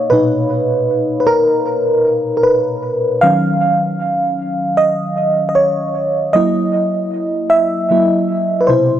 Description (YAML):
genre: R&B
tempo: 77 BPM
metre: 4/4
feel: straight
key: unclear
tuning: A4 = 440 Hz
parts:
  - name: mellow FM electric piano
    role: solo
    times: 0.0-9.0 s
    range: A#2 to F5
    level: -13 LUFS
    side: equal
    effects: chorus, tape echo
room: light reverb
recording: dry, gritty hardware recording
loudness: -13 LUFS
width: side -11 dB against mid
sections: 0.0-9.0 A section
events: FM electric piano solo 0.0-9.0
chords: 0.0 Bmaj7; 3.2 Ebm7; 6.3 Gb7